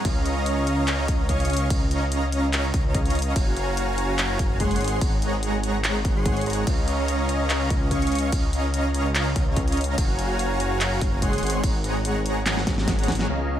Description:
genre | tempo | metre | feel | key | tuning
future bass | 145 BPM | 4/4 | swing 53% on 16ths, half-time | Db major | A4 = 440 Hz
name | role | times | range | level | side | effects
dense compressed supersaw | riff | 0.0-13.6 s | Ab3 to Db6 | -26 LUFS | equal | cassette tape, sidechain pumping, low-pass filter, digital delay
wide detuned saw bass | bass | 0.0-13.6 s | Gb1 to Db2 | -26 LUFS | equal | chorus, sidechain pumping
big-room dance drum kit | drums | 0.0-13.4 s | crash cymbal, handclaps, hi-hat, snare drum | -29 LUFS | equal | low-pass filter on hats, low-pass filter on snare, low-pass filter on cymbals
electronic kick drum | drums | 0.1-13.2 s | none | -24 LUFS | equal | none
room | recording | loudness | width
digital ambience | none | -21 LUFS | side -11 dB against mid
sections
0.0-13.3 A section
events
drop 0.0-13.3; drum fill 12.5-13.3; band accent 13.2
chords
0.0 Db6; 3.4 Gbmaj7; 4.8 Ab7sus4; 6.7 Db6; 10.0 Gbmaj7; 11.4 Ab7sus4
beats
| 0.05 0.46 0.88 1.29 | 1.70 2.12 2.53 2.95 | 3.36 3.77 4.19 4.60 | 5.01 5.43 5.84 6.26 | 6.67 7.08 7.50 7.91 | 8.32 8.74 9.15 9.57 | 9.98 10.39 10.81 11.22 | 11.63 12.05 12.46 12.88 | 13.29

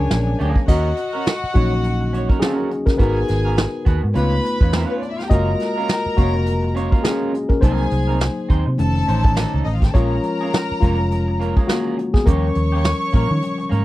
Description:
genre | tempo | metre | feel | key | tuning
lush 1970s-style soul | 104 BPM | 4/4 | swing 58% on 16ths | Eb minor | A4 = 439 Hz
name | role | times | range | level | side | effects
warm studio violin section | second line | 0.0-13.8 s | Cb4 to Db6 | -26 LUFS | left 1 dB | none
tine electric piano | accompaniment | 0.0-13.8 s | Eb3 to Eb5 | -22 LUFS | left 3 dB | none
electric guitar through a small old amp | riff | 0.0-13.8 s | Bb3 to Db5 | -28 LUFS | right 6 dB | none
vintage muted fingered electric bass | bass | 0.0-13.8 s | F1 to Eb3 | -20 LUFS | equal | none
vintage brush drum kit | drums | 0.1-13.8 s | crash cymbal, hi-hat, kick drum, snare drum | -17 LUFS | equal | none
room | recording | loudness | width
little or no reverb | dry, close 1970s-style studio recording | -16 LUFS | side -16 dB against mid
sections
0.7-13.8 A section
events
tine electric piano solo 0.7-13.8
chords
0.0 Bb7alt; 0.7 Ebm7; 3.0 Abm9; 4.1 Db7alt; 5.3 Gbmaj7; 7.6 Cm7b5; 8.8 F7b13; 9.9 Bbm7; 12.3 Eb7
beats
0.10 | 0.68 1.26 1.84 2.41 | 2.99 3.57 4.15 4.73 | 5.31 5.88 6.46 7.04 | 7.62 8.20 8.78 9.36 | 9.94 10.52 11.10 11.68 | 12.26 12.84 13.42

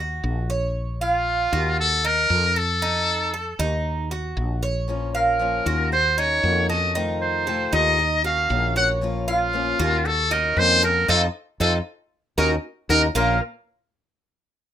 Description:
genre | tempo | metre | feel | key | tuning
latin | 116 BPM | 4/4 | straight | Bb harmonic minor | A4 = 440 Hz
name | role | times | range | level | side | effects
Cuban tres | arpeggios | 0.0-13.4 s | Bb3 to F5 | -26 LUFS | right 3 dB | none
woody fretless electric bass | bass | 0.0-13.4 s | Bb1 to F2 | -26 LUFS | equal | analog chorus
trumpet with metal mute | melody | 1.0-13.4 s | F4 to Gb5 | -20 LUFS | equal | none
picked old ladder-braced acoustic guitar | accompaniment | 4.9-13.4 s | Bb2 to Gb4 | -28 LUFS | left 6 dB | none
room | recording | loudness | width
moderate studio reverb, RT60 0.5 s | rough home demo mix | -19 LUFS | side -10 dB against mid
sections
0.0-13.2 A section; 13.2-14.7 B section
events
band accent 11.1-13.2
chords
0.0 Ebm7; 0.8 Bbm; 1.8 Ebm; 2.8 F7; 3.9 Ebm7; 4.9 Bbm; 5.9 Ebm7; 7.0 F7; 8.0 Ebm7; 9.0 Bbm; 10.1 Ebm7; 11.1 F7; 12.1 Ebm7; 13.2 Bbm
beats
0.24 | 0.76 1.27 1.79 2.31 | 2.82 3.34 3.85 4.37 | 4.89 5.41 5.92 6.44 | 6.96 7.47 7.99 8.50 | 9.02 9.54 10.05 10.57 | 11.09 11.60 12.12 12.64 | 13.15

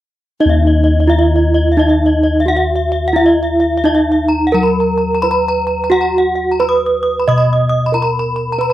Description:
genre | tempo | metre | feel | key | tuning
Balinese gamelan | 87 BPM | 4/4 | straight | Eb pelog | A4 = 440 Hz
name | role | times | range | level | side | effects
gamelan-type bronze metallophone | melody | 0.4-8.7 s | Eb4 to Eb5 | -14 LUFS | right 3 dB | none
gamelan-type bronze metallophone | arpeggios | 0.4-8.7 s | Eb5 to Eb6 | -18 LUFS | left 3 dB | none
gamelan-type bossed gongs | bass | 0.4-8.7 s | Eb2 to Cb5 | -16 LUFS | left 1 dB | none
room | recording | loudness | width
light reverb | dry, close 1970s-style studio recording | -11 LUFS | side -13 dB against mid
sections
0.4-8.7 A section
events
none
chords
none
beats
| 0.40 1.09 1.78 2.47 | 3.16 3.85 4.54 5.23 | 5.92 6.60 7.28 7.94 | 8.60

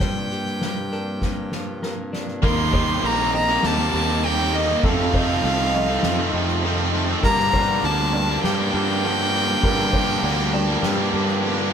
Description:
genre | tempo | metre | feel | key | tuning
post-rock | 100 BPM | 4/4 | straight | G minor | A4 = 440 Hz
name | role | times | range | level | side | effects
rich violin | melody | 0.0-11.4 s | Eb5 to C6 | -24 LUFS | equal | none
warm analog pad | sustained chords | 0.0-11.7 s | F3 to F5 | -33 LUFS | equal | none
felt-muted upright piano | arpeggios | 0.0-11.1 s | A4 to Eb5 | -32 LUFS | equal | none
twelve-string electric guitar | arpeggios | 0.0-11.7 s | F2 to G4 | -31 LUFS | left 2 dB | none
fuzz fingered electric bass | bass | 0.0-11.7 s | Bb1 to G2 | -26 LUFS | equal | overdrive
soft-mallet drum kit | drums | 0.0-11.6 s | kick drum, ride cymbal, snare drum | -25 LUFS | right 1 dB | none
biting overdriven guitar | riff | 2.4-11.7 s | F2 to Eb4 | -27 LUFS | left 8 dB | none
distorted electric guitar | riff | 2.4-11.7 s | F2 to Eb4 | -26 LUFS | right 7 dB | overdrive
room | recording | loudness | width
moderate studio reverb, RT60 0.8 s | band playing live in one room | -18 LUFS | side -8 dB against mid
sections
0.0-2.4 A section; 2.4-11.7 B section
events
none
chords
0.0 Gm7; 2.4 Eb6; 4.8 F7; 7.2 Gm7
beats
| 0.01 0.62 1.22 1.83 | 2.43 3.03 3.64 4.24 | 4.84 5.44 6.04 6.64 | 7.24 7.84 8.44 9.03 | 9.63 10.23 10.82 11.42

